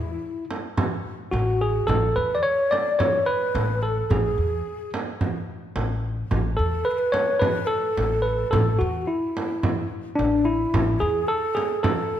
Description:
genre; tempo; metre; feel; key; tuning
Arabic maqam ensemble; 108 BPM; 4/4; straight; A maqam ajam; A4 = 440 Hz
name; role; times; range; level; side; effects
tine electric piano; melody; 0.0-12.2 s; D4 to D5; -23 LUFS; equal; none
breathy mellow ney; second line; 0.0-12.2 s; C#4 to D5; -30 LUFS; left 3 dB; none
upright bass; bass; 0.0-11.2 s; A1 to E2; -25 LUFS; left 1 dB; none
frame drum; percussion; 0.5-12.0 s; none; -27 LUFS; right 2 dB; none
room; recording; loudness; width
moderate recital hall reverb, RT60 1.6 s; none; -21 LUFS; side -10 dB against mid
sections
0.0-12.2 A section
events
none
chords
none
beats
0.22 0.78 1.33 | 1.88 2.44 2.99 3.55 | 4.10 4.65 5.21 5.76 | 6.31 6.87 7.42 7.97 | 8.52 9.08 9.63 10.18 | 10.73 11.29 11.84

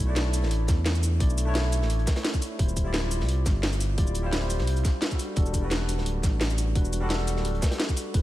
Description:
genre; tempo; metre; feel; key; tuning
liquid drum and bass; 173 BPM; 4/4; swing 53% on 16ths; unclear; A4 = 441 Hz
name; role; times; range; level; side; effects
tine electric piano; accompaniment; 0.0-8.2 s; G3 to D5; -32 LUFS; left 1 dB; lush chorus, analog delay
smooth synth bass; bass; 0.0-8.2 s; D1 to E2; -26 LUFS; equal; none
crunchy breakbeat drum kit; drums; 0.2-8.2 s; hi-hat, snare drum; -37 LUFS; equal; high-pass filter on hats, high-pass filter on snare, high-pass filter on room
drum and bass drum kit; drums; 0.2-8.2 s; cabasa, hi-hat, snare drum; -32 LUFS; equal; none
electronic kick drum; drums; 0.7-8.2 s; none; -25 LUFS; equal; none
room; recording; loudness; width
light reverb, digital ambience; none; -23 LUFS; side -15 dB against mid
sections
0.0-8.2 A section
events
none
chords
0.0 Bm11; 2.6 Dm11; 5.2 Em11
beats
0.16 0.51 0.86 | 1.20 1.55 1.90 2.25 | 2.59 2.94 3.29 3.63 | 3.98 4.33 4.67 5.02 | 5.37 5.71 6.06 6.41 | 6.75 7.10 7.45 7.79 | 8.14

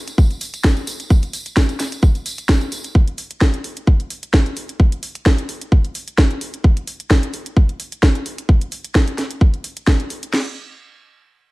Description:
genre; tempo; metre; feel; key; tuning
house; 130 BPM; 4/4; swing 54% on 16ths; none; none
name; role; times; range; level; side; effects
garage drum kit; drums; 0.1-10.3 s; hi-hat, snare drum; -21 LUFS; equal; overdrive, studio reverb
tambourine; percussion; 0.1-2.9 s; none; -31 LUFS; right 1 dB; none
garage drum kit; drums; 0.2-10.5 s; crash cymbal, kick drum, snare drum; -13 LUFS; equal; overdrive, studio reverb
room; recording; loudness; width
little or no reverb; lossy compression artefacts; -16 LUFS; side -22 dB against mid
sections
0.0-10.3 A section; 10.3-11.5 B section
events
none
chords
none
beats
0.18 0.64 | 1.10 1.57 2.03 2.49 | 2.95 3.41 3.87 4.33 | 4.80 5.26 5.72 6.18 | 6.64 7.10 7.57 8.03 | 8.49 8.95 9.41 9.87 | 10.34

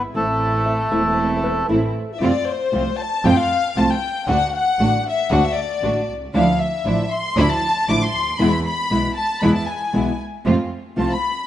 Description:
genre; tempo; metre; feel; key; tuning
tango; 116 BPM; 4/4; rubato; unclear; A4 = 440 Hz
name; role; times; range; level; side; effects
bandoneon; melody; 0.0-1.7 s; A3 to A4; -21 LUFS; equal; none
clear double bass; bass; 0.0-11.2 s; E1 to F2; -23 LUFS; right 2 dB; none
nylon-string guitar; accompaniment; 0.1-11.1 s; B2 to F#4; -22 LUFS; left 1 dB; none
warm studio violin section; second line; 0.2-11.5 s; A3 to D6; -22 LUFS; left 4 dB; none
warm chamber string section; stabs; 0.2-11.2 s; F3 to F#4; -24 LUFS; right 3 dB; none
hollow-body jazz guitar; second line; 0.7-2.2 s; A4 to E5; -30 LUFS; left 2 dB; none
room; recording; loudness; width
light reverb, studio reverb; rough home demo mix, nothing above 10.7 kHz; -17 LUFS; side -12 dB against mid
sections
0.0-2.2 A section; 2.2-11.5 B section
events
violin section solo 2.2-11.5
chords
0.2 Am; 2.2 F; 4.3 D; 6.3 Dmadd9; 8.4 E; 10.5 F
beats
| 0.15 0.67 1.18 1.70 | 2.22 2.73 3.25 3.77 | 4.28 4.80 5.31 5.83 | 6.34 6.85 7.37 7.88 | 8.40 8.91 9.43 9.94 | 10.46 10.97

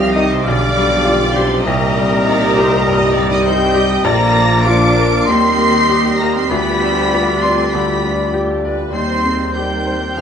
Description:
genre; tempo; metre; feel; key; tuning
classical; 99 BPM; 4/4; rubato; C minor; A4 = 437 Hz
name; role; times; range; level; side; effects
bright baby grand piano; melody; 0.0-10.2 s; Bb1 to D5; -19 LUFS; left 3 dB; none
warm symphonic violin section; melody; 0.0-10.2 s; Bb5 to D7; -22 LUFS; equal; none
mellow clarinet; second line; 0.0-10.2 s; D4 to Bb4; -28 LUFS; left 2 dB; none
mellow hollow small flute group; second line; 0.0-10.2 s; Bb4 to D6; -21 LUFS; left 1 dB; none
warm oboe; second line; 0.0-10.2 s; C5 to F5; -24 LUFS; right 1 dB; none
warm symphonic violin section; second line; 0.0-10.2 s; Bb4 to D6; -25 LUFS; left 1 dB; none
mellow bassoon; accompaniment; 0.0-10.2 s; F3 to G3; -24 LUFS; right 3 dB; none
rich symphonic viola section; accompaniment; 0.0-10.2 s; F4 to Eb5; -24 LUFS; left 1 dB; none
warm French horn section; sustained chords; 0.0-10.2 s; Bb3 to Bb4; -24 LUFS; left 3 dB; none
warm trombone section; sustained chords; 0.0-10.2 s; D3 to Ab3; -27 LUFS; right 1 dB; none
dark tuba; bass; 0.0-10.2 s; F1 to Eb2; -23 LUFS; right 3 dB; none
rich symphonic cello section; bass; 0.0-10.2 s; Bb2 to D4; -24 LUFS; right 1 dB; none
rich symphonic double bass section; bass; 0.0-10.2 s; Bb1 to F2; -23 LUFS; right 1 dB; none
room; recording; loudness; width
wet stone room reverb, RT60 1.1 s; nothing above 10.8 kHz; -12 LUFS; side -7 dB against mid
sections
0.0-10.2 A section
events
none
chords
0.4 G7/B; 1.6 Cm; 4.0 Bb; 5.3 Eb; 6.5 G7/D; 8.9 Cm/Eb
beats
0.45 1.04 | 1.64 2.25 2.85 3.44 | 4.03 4.64 5.26 5.88 | 6.49 7.10 7.71 8.33 | 8.93 9.54 10.17

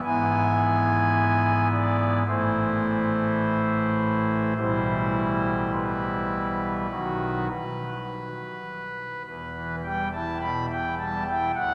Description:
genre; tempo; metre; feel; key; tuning
classical, chorale-style piece for pipe organ; 52 BPM; 4/4; straight; unclear; A4 = 438 Hz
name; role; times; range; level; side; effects
pipe organ, foundations; solo; 0.0-11.7 s; D1 to B5; -26 LUFS; equal; none
room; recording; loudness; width
wet cathedral reverb, RT60 5.8 s; none; -26 LUFS; mono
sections
0.0-9.3 A section; 9.3-11.7 B section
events
none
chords
0.0 E/G#; 2.3 Am; 4.6 Em/B; 6.9 B; 9.3 Em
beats
| 0.03 1.16 2.26 3.40 | 4.57 5.75 6.92 8.09 | 9.27 10.42 11.56

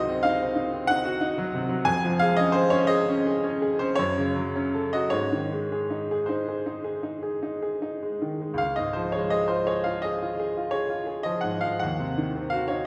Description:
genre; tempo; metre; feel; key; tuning
classical, romantic nocturne for solo piano; 50-64 BPM (dotted quarters); 9/8; rubato; Db major; A4 = 439 Hz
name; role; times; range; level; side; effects
bright upright piano; solo; 0.0-12.9 s; Db2 to Ab5; -26 LUFS; equal; none
room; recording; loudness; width
wet recital hall reverb, RT60 1.7 s; heard from further back in the room; -26 LUFS; mono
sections
0.0-12.9 A section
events
none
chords
0.0 Cdim/Db; 1.9 Db/F; 4.0 Gbm; 5.1 Ab; 8.6 Db; 11.8 Cdim/Eb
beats
0.87 | 1.85 2.89 3.97 | 5.12 6.29 7.43 | 8.60 9.68 10.74 | 11.82

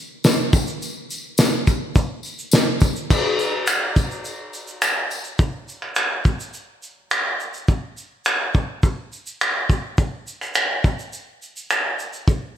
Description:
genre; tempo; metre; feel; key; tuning
pop; 105 BPM; 4/4; straight; none; none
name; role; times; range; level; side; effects
cloth-damped thuddy drum kit; drums; 0.2-12.4 s; crash cymbal, finger snaps, kick drum, shaker, snare drum; -18 LUFS; equal; none
tambourine; percussion; 0.2-5.2 s; none; -30 LUFS; left 3 dB; none
room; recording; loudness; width
light reverb, small room ambience; none; -19 LUFS; side -10 dB against mid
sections
0.0-3.1 A section; 3.1-5.4 B section; 5.4-12.6 C section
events
none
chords
none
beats
0.24 | 0.82 1.39 1.96 2.53 | 3.10 3.68 4.25 4.82 | 5.39 5.97 6.54 7.12 | 7.69 8.26 8.84 9.41 | 9.98 10.56 11.13 11.70 | 12.28

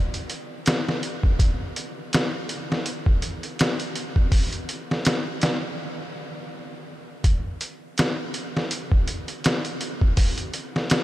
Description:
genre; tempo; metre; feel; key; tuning
trip hop; 82 BPM; 4/4; swing 57% on 16ths; none; none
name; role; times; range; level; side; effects
trip hop sampler-style drum kit; drums; 0.1-11.0 s; hi-hat, kick drum, snare drum; -22 LUFS; equal; none
room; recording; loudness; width
moderate huge ambient reverb, RT60 7.8 s; dreamy mix soaked in reverb; -22 LUFS; side -15 dB against mid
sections
0.0-7.2 A section; 7.2-11.0 B section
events
stop 5.8-7.2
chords
none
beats
0.66 | 1.39 2.12 2.85 3.59 | 4.32 5.05 5.78 6.51 | 7.25 7.98 8.71 9.44 | 10.17 10.90

